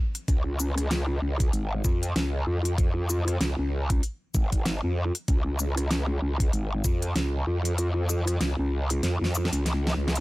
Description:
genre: glitch hop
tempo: 96 BPM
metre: 4/4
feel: swing 58% on 16ths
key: unclear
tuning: A4 = 440 Hz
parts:
  - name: pop drum kit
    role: drums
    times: 0.1-10.2 s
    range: hi-hat, rim click, shaker, snare drum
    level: -31 LUFS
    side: equal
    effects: none
  - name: growl bass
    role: bass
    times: 0.3-10.2 s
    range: G#1 to E#2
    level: -26 LUFS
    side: equal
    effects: chorus
  - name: electronic kick drum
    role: drums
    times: 0.3-7.0 s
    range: none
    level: -24 LUFS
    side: equal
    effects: none
room: digital ambience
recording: none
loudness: -24 LUFS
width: side -20 dB against mid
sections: 0.0-10.2 A section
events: kick drops out 7.8-10.2; drum fill 9.0-10.2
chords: none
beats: | 0.28 0.91 1.53 2.16 | 2.78 3.41 4.03 4.66 | 5.28 5.91 6.53 7.16 | 7.78 8.41 9.03 9.66

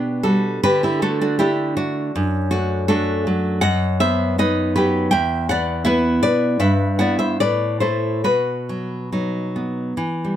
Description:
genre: romantic piece for solo classical guitar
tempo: 68-81 BPM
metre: 2/4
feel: rubato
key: unclear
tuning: A4 = 440 Hz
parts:
  - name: nylon-string guitar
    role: solo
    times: 0.0-10.4 s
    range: E2 to G5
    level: -17 LUFS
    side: equal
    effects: none
room: little or no reverb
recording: close, detailed microphones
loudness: -17 LUFS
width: side -10 dB against mid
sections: 0.0-10.0 A section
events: none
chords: 0.0 G/B; 0.6 D; 2.1 D/F#; 3.6 B/F#; 5.1 E5; 6.6 Em/G; 7.4 Am; 8.3 B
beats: | 0.62 1.38 | 2.13 2.88 | 3.62 4.37 | 5.11 5.86 | 6.61 7.41 | 8.26 9.13 | 9.97

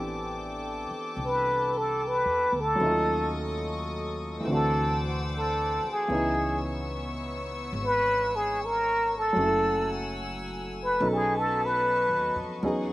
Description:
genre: jazz ballad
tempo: 73 BPM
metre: 4/4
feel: swing 68% on 8ths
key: unclear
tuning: A4 = 438 Hz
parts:
  - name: warm upright piano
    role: accompaniment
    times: 0.0-12.9 s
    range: E3 to A4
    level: -32 LUFS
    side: equal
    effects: none
  - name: warm studio string section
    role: sustained chords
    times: 0.0-12.9 s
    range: B3 to E6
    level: -36 LUFS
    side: left 2 dB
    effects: none
  - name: upright bass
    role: bass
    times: 0.0-12.9 s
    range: F#1 to F2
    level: -34 LUFS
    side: equal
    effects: none
  - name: trumpet with plunger mute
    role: melody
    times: 1.3-12.4 s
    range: F#4 to B4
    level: -25 LUFS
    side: equal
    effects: slapback echo
room: little or no reverb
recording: recorded outdoors, with no room sound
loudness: -25 LUFS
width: side -17 dB against mid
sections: 0.0-12.9 A section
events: muted trumpet solo 0.0-12.9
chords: 0.0 Am11; 2.8 D#m7b5; 4.5 D9; 6.1 C#m9; 9.4 F#m9; 11.0 B9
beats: 0.35 1.17 1.98 | 2.80 3.62 4.45 5.28 | 6.10 6.92 7.74 8.55 | 9.37 10.18 11.00 11.81 | 12.63

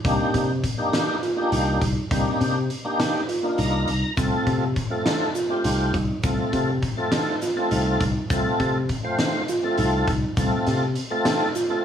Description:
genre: progressive instrumental, band music in an uneven meter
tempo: 203 BPM (eighths)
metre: 7/8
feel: straight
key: unclear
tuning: A4 = 440 Hz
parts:
  - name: tonewheel organ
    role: accompaniment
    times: 0.0-11.8 s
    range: A3 to Bb5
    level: -25 LUFS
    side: left 1 dB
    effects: overdrive, chorus vibrato, slow rotary speaker
  - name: modern bright fingered electric bass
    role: bass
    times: 0.0-10.9 s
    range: C2 to C3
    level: -24 LUFS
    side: left 1 dB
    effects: none
  - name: oversized low-tuned drum kit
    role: drums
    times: 0.0-11.7 s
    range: hi-hat, kick drum, snare drum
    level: -27 LUFS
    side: equal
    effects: none
  - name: mellow tine electric piano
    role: arpeggios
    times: 0.1-11.8 s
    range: C4 to F4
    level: -28 LUFS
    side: right 2 dB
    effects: digital delay
  - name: egg shaker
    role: percussion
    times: 4.2-11.8 s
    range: none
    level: -42 LUFS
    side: left 6 dB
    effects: none
room: moderate studio reverb, RT60 1.0 s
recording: small room ambience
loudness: -20 LUFS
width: side -9 dB against mid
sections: 0.0-11.8 A section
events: tonewheel organ fill 3.3-4.2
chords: 0.0 Cm7; 4.2 F/C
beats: | 0.05 0.34 0.64 0.93 1.23 1.52 1.81 | 2.11 2.40 2.70 2.99 3.29 3.58 3.88 | 4.17 4.47 4.76 5.06 5.35 5.65 5.94 | 6.24 6.53 6.83 7.12 7.42 7.71 8.01 | 8.30 8.60 8.89 9.19 9.48 9.78 10.07 | 10.37 10.67 10.96 11.26 11.55

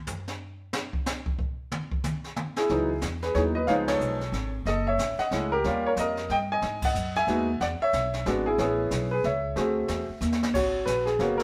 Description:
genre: jazz piano trio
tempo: 184 BPM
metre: 3/4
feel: swing 62% on 8ths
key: C# minor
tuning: A4 = 444 Hz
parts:
  - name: jazz brush drum kit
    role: drums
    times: 0.1-11.4 s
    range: brushed snare drum, crash cymbal, hi-hat, kick drum, ride cymbal, snare drum, toms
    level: -36 LUFS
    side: equal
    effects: none
  - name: warm concert grand piano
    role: melody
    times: 2.6-11.4 s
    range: E3 to G#5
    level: -28 LUFS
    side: equal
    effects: none
  - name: upright bass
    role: bass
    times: 2.7-11.4 s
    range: F#1 to G#2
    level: -33 LUFS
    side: equal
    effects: none
room: moderate studio reverb, RT60 0.8 s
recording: band playing live in one room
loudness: -27 LUFS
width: mono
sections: 0.0-2.7 A section; 2.7-10.5 B section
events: drum solo 0.0-2.7; band accent 3.8, 6.8; drum fill 10.2-10.5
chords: 0.0 N.C.; 2.7 C#m11; 3.7 C#7; 4.7 F#m7; 5.6 D#7; 6.6 G#7(no3); 7.6 E; 8.6 Amaj7; 9.6 D7#11; 10.2 N.C.; 10.5 G#m11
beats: 0.08 0.41 | 0.73 1.06 1.39 | 1.71 2.04 2.37 | 2.69 3.02 3.35 | 3.67 4.00 4.33 | 4.66 4.98 5.31 | 5.64 5.96 6.29 | 6.62 6.95 7.27 | 7.60 7.92 8.25 | 8.58 8.91 9.23 | 9.56 9.89 10.21 | 10.54 10.87 11.19

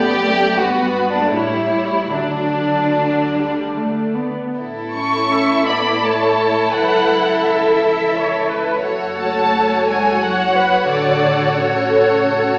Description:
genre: classical, slow romantic movement for string orchestra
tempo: 70-91 BPM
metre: 3/4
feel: rubato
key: D major, A major from 4.6 s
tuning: A4 = 443 Hz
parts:
  - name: dark studio violin section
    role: melody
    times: 0.0-12.6 s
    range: B4 to C#6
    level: -20 LUFS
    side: equal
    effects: none
  - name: warm studio violin section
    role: second line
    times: 0.0-12.6 s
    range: D4 to C#5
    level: -17 LUFS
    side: equal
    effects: none
  - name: dark studio viola section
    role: accompaniment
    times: 0.0-12.6 s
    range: F#3 to E5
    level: -20 LUFS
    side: equal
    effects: none
  - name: rich studio cello section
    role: bass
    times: 0.0-12.6 s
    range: F#2 to C#4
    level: -25 LUFS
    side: equal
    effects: none
  - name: rich studio double bass section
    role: bass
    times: 0.0-12.6 s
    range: F#1 to D2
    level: -32 LUFS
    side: equal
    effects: none
room: wet recital hall reverb, RT60 1.4 s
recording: heard from further back in the room, small speaker sound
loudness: -14 LUFS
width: side -35 dB against mid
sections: 0.0-4.6 A section; 4.6-12.6 B section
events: none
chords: 0.0 D/F#; 0.6 Gmaj7; 1.3 A; 2.1 D; 4.6 A; 6.7 A/C#; 8.8 F#m; 10.9 F#m/A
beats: 0.58 1.31 | 2.11 2.96 3.78 | 4.57 5.30 6.03 | 6.74 7.45 8.14 | 8.84 9.55 10.22 | 10.89 11.57 12.26

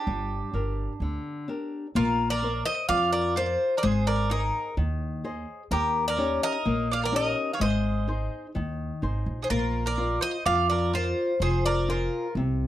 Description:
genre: greek folk, Greek bouzouki band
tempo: 127 BPM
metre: 4/4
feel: straight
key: unclear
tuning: A4 = 441 Hz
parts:
  - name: Greek bouzouki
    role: melody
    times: 0.0-12.3 s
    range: G4 to F5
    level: -28 LUFS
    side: left 2 dB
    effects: slapback echo
  - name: bowl-back mandolin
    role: second line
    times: 0.0-12.3 s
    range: D4 to D5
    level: -32 LUFS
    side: right 8 dB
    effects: slapback echo
  - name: flamenco guitar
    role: accompaniment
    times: 0.1-12.7 s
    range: C3 to Eb5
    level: -30 LUFS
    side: left 3 dB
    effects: none
  - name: upright bass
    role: bass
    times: 0.1-12.7 s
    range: F1 to F2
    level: -29 LUFS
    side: right 1 dB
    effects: none
room: light reverb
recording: dry, close 1970s-style studio recording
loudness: -24 LUFS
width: side -13 dB against mid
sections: 0.0-1.9 A section; 1.9-12.7 B section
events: break 1.5-1.9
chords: 0.1 Gm; 1.9 Bbadd9; 3.8 Ab; 5.7 Eb7; 7.6 Ab; 9.5 Bb; 11.4 Fm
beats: | 0.07 0.54 1.01 1.48 | 1.95 2.42 2.89 3.36 | 3.83 4.30 4.77 5.24 | 5.71 6.19 6.66 7.13 | 7.61 8.08 8.55 9.03 | 9.50 9.98 10.45 10.93 | 11.40 11.88 12.35

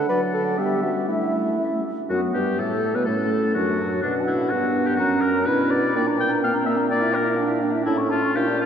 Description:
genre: quick classical-period movement for wind quintet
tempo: 124 BPM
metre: 2/4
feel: rubato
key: unclear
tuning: A4 = 438 Hz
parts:
  - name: wooden flute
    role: melody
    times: 0.0-8.7 s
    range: F#4 to C#6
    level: -29 LUFS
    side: left 4 dB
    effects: none
  - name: warm oboe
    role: second line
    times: 0.0-8.7 s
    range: D4 to G5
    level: -26 LUFS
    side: left 2 dB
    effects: none
  - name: dark French horn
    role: accompaniment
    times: 0.0-8.7 s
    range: F#3 to F4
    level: -26 LUFS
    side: left 1 dB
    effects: none
  - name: mellow clarinet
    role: accompaniment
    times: 0.0-8.7 s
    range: A3 to F#4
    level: -26 LUFS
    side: right 4 dB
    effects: none
  - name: mellow bassoon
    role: bass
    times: 0.0-8.7 s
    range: F#2 to B4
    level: -25 LUFS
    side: right 1 dB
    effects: none
room: wet cathedral reverb, RT60 4.4 s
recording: dark, warm production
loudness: -19 LUFS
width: side -8 dB against mid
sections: 0.0-2.1 A section; 2.1-8.7 A section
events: none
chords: 0.1 D/F#; 0.6 Em/G; 1.1 Asus4; 1.6 A; 2.1 Gmaj9/F#; 3.1 A; 3.6 D/F#; 4.0 Bm; 5.0 F#; 5.5 Bm; 6.0 Gm/Bb; 6.9 Em7b5/Bb; 7.9 A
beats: | 0.09 0.58 | 1.08 1.59 | 2.10 2.59 | 3.07 3.55 | 4.04 4.52 | 5.00 5.47 | 5.95 6.43 | 6.90 7.38 | 7.87 8.36

